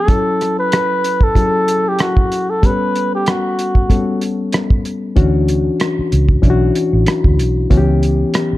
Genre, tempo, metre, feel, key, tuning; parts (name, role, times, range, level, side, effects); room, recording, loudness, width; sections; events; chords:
lush 1970s-style soul; 94 BPM; 4/4; swing 54% on 16ths; D major; A4 = 440 Hz
warm flugelhorn; melody; 0.0-4.2 s; F#4 to B4; -17 LUFS; equal
barky reed electric piano; accompaniment; 0.0-8.6 s; E3 to A4; -18 LUFS; left 3 dB; overdrive
cloth-damped thuddy drum kit; drums; 0.1-8.5 s; hi-hat, kick drum, rim click; -15 LUFS; right 1 dB
vintage muted fingered electric bass; bass; 5.2-8.6 s; A1 to D2; -15 LUFS; right 1 dB
light reverb, small room reverb; dark, warm production; -13 LUFS; side -16 dB against mid
0.0-8.6 A section
0.1 F#m7; 2.6 A9; 5.2 Dmaj9; 7.7 C#m7b5